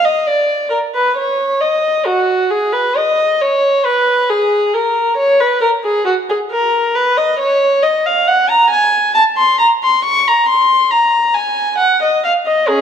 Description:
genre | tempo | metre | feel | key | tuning
classical, baroque-style suite movement for unaccompanied violin | 68 BPM | 3/4 | rubato | Eb minor | A4 = 440 Hz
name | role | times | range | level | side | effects
dark violin | solo | 0.0-12.8 s | Db4 to Db6 | -11 LUFS | equal | none
room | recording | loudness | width
moderate recital hall reverb, RT60 1.7 s | none | -11 LUFS | side -8 dB against mid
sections
0.0-12.8 A section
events
none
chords
none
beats
0.25 1.15 | 2.06 2.96 3.85 | 4.74 5.62 6.51 | 7.39 8.28 9.15 | 10.03 10.91 11.79 | 12.68

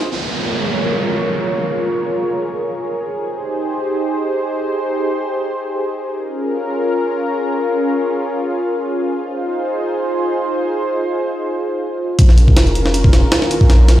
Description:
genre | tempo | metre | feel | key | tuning
drum and bass, jungle | free time | none | none | Bb dorian | A4 = 443 Hz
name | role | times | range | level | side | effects
lush unison pad | sustained chords | 0.0-14.0 s | Db4 to Db5 | -18 LUFS | equal | chorus, vintage 12-bit sampler grit
downlifter and riser | sound effects | 0.1-3.1, 12.8-14.0 s | none | -23 LUFS | right 1 dB | none
saturated sub bass | bass | 12.2-14.0 s | F1 to Bb1 | -12 LUFS | equal | none
jungle sampler-style drum kit | drums | 12.2-14.0 s | hi-hat, kick drum, snare drum | -12 LUFS | equal | small room ambience
room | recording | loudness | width
moderate digital room reverb, RT60 1.1 s, digital ambience | played on a big sound system in a bare room, large studio reverb | -15 LUFS | side -13 dB against mid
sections
0.1-12.2 A section; 12.2-14.0 B section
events
build-up 12.2-14.0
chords
0.1 Bbm7; 3.1 Abmaj7; 6.2 Bbm7; 9.2 Fm7; 12.2 Bbm7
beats
free time

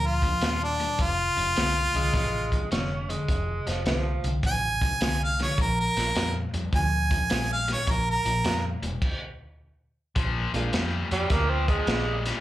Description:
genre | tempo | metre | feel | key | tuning
electric blues shuffle | 105 BPM | 4/4 | swing 67% on 8ths | Bb mixolydian | A4 = 440 Hz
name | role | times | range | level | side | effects
bright harmonica | melody | 0.0-8.6 s | D4 to Ab5 | -26 LUFS | right 1 dB | slapback echo
cranked stack guitar | riff | 0.0-12.4 s | F2 to G3 | -32 LUFS | left 3 dB | overdrive
vintage muted fingered electric bass | bass | 0.0-12.3 s | E1 to F2 | -29 LUFS | equal | none
crunchy breakbeat drum kit | drums | 0.2-12.3 s | crash cymbal, hi-hat, kick drum, snare drum | -29 LUFS | equal | none
clear tenor saxophone | second line | 2.0-4.3, 11.1-12.2 s | F3 to Db4 | -30 LUFS | right 3 dB | slapback echo
warm upright piano | accompaniment | 10.5-10.7 s | F3 to F4 | -33 LUFS | right 3 dB | none
room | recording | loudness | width
light reverb | live gig heard through the venue's PA, club reverb | -23 LUFS | side -14 dB against mid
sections
0.0-10.2 A section; 10.2-12.4 B section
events
stop 9.0-10.2; tenor saxophone solo 10.2-12.4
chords
0.0 Bb; 1.0 F; 5.6 Bb7; 9.0 N.C.; 10.2 Bb7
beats
0.42 | 0.99 1.56 2.14 2.71 | 3.29 3.86 4.44 5.01 | 5.58 6.16 6.73 7.30 | 7.88 8.45 9.02 9.59 | 10.16 10.74 11.31 11.88

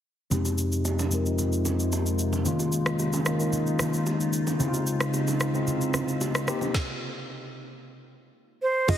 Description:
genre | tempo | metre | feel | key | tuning
amapiano | 112 BPM | 4/4 | straight | F minor | A4 = 440 Hz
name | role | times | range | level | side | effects
mellow tine electric piano | accompaniment | 0.3-9.0 s | F2 to Bb4 | -26 LUFS | left 1 dB | wide subtle chorus, low-pass filter
glassy FM pad | sustained chords | 0.6-9.0 s | C3 to F4 | -33 LUFS | equal | ensemble chorus, built-in reverb, sidechain pumping, low-pass filter
smooth R&B drum kit | drums | 0.3-9.0 s | crash cymbal, kick drum, rim click, shaker, snare drum | -31 LUFS | equal | none
congas and bongos | percussion | 0.3-6.7 s | none | -34 LUFS | right 5 dB | none
silver concert flute | melody | 8.6-9.0 s | C5 to Eb5 | -23 LUFS | right 2 dB | none
mallet-like synth pluck | stabs | 8.9-9.0 s | F4 to Eb5 | -28 LUFS | right 5 dB | chorus, phaser
woody log drum bass | bass | 8.9-9.0 s | F1 | -23 LUFS | equal | none
room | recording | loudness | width
light reverb, digital ambience | heavily compressed radio sound, multiband compression | -24 LUFS | side -10 dB against mid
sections
0.3-8.9 A section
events
filter sweep 0.3-8.9; stop 6.7-8.9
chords
0.3 Fm7; 2.5 Eb9sus4; 4.6 Dbmaj9; 6.5 Cm7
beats
| 0.32 0.85 1.39 1.92 | 2.46 2.99 3.53 4.07 | 4.60 5.14 5.67 6.21 | 6.74 7.28 7.82 8.35 | 8.89

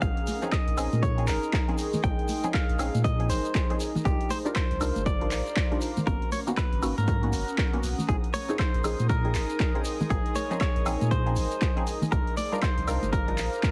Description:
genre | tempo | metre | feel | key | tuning
deep house | 119 BPM | 4/4 | swing 61% on 16ths | unclear | A4 = 440 Hz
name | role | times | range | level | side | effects
direct-recorded clean electric guitar | melody | 0.0-13.7 s | G4 to G5 | -35 LUFS | equal | none
deep dark ambient pad | sustained chords | 0.0-13.7 s | Ab4 to Eb6 | -43 LUFS | equal | chorus, built-in reverb, sidechain pumping
filtered dub chord stab | stabs | 0.0-13.7 s | Eb3 to Bb4 | -37 LUFS | equal | phaser, subtle chorus, sidechain pumping, analog delay
warm sub bass | bass | 0.0-13.5 s | Gb1 to Bb2 | -31 LUFS | equal | sidechain pumping
electronic kick drum | drums | 0.0-13.7 s | none | -30 LUFS | equal | overdrive
punchy analog drum machine | drums | 0.0-13.7 s | handclaps, hi-hat, woodblock | -38 LUFS | equal | overdrive
shekere | percussion | 0.0-13.7 s | none | -45 LUFS | equal | none
airy breathy pad | texture | 0.0-13.7 s | Db4 to Bb5 | -39 LUFS | equal | chorus, sidechain pumping
congas | percussion | 0.3-13.1 s | none | -35 LUFS | equal | none
room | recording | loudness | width
light reverb | heavily compressed radio sound, multiband compression, cassette tape | -27 LUFS | mono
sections
0.0-13.7 A section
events
none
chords
0.0 Bbm11; 4.1 Cm11; 6.1 Abm11; 8.1 Bbm11; 12.1 Cm11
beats
| 0.02 0.52 1.03 1.53 | 2.04 2.54 3.04 3.55 | 4.05 4.56 5.06 5.57 | 6.07 6.57 7.08 7.58 | 8.09 8.59 9.10 9.60 | 10.10 10.61 11.11 11.62 | 12.12 12.62 13.13 13.63

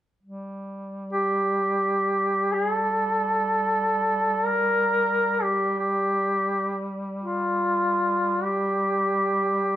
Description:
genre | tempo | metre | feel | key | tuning
caucasian folk, Caucasian lament | free time | none | none | G minor | A4 = 440 Hz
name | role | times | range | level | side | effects
warm duduk | drone | 0.2-9.8 s | G3 | -31 LUFS | equal | none
warm duduk | melody | 1.1-9.8 s | F4 to Bb4 | -22 LUFS | equal | none
room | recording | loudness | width
moderate recital hall reverb, RT60 1.5 s | none | -22 LUFS | side -12 dB against mid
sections
0.2-9.8 A section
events
none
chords
none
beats
free time

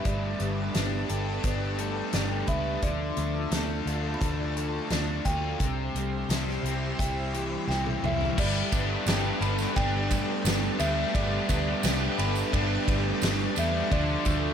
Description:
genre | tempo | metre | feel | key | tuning
rock, shoegaze and dream pop | 87 BPM | 4/4 | straight | G mixolydian | A4 = 444 Hz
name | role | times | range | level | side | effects
kalimba | melody | 0.0-14.5 s | D5 to B5 | -35 LUFS | equal | analog delay
string machine, violins | sustained chords | 0.0-14.5 s | F4 to C6 | -37 LUFS | equal | phaser, ensemble chorus
electric guitar through a small old amp | arpeggios | 0.0-14.5 s | F3 to A4 | -38 LUFS | left 3 dB | ensemble chorus, analog delay
overdriven electric guitar | riff | 0.0-14.5 s | C3 to B4 | -33 LUFS | left 10 dB | analog chorus
raw garage guitar | riff | 0.0-14.5 s | C3 to A4 | -35 LUFS | right 12 dB | overdrive, reverse reverb
loose indie drum kit | drums | 0.0-14.4 s | crash cymbal, hi-hat, kick drum, ride cymbal, snare drum, toms | -30 LUFS | equal | none
vintage muted fingered electric bass | bass | 0.1-14.5 s | G1 to E2 | -31 LUFS | equal | none
distorted electric guitar | riff | 8.4-14.5 s | G2 to D4 | -34 LUFS | equal | overdrive
tambourine | percussion | 8.7-14.4 s | none | -40 LUFS | right 17 dB | none
room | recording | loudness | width
light reverb, studio ambience | none | -25 LUFS | side -8 dB against mid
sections
0.0-8.4 A section; 8.4-14.5 B section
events
drum fill 7.7-8.4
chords
0.0 Gadd9; 2.8 Dm; 5.6 C; 8.4 Gadd9; 13.9 Dm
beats
| 0.05 0.74 1.44 2.13 | 2.82 3.52 4.21 4.91 | 5.60 6.29 6.99 7.68 | 8.37 9.07 9.76 10.45 | 11.14 11.83 12.52 13.21 | 13.91

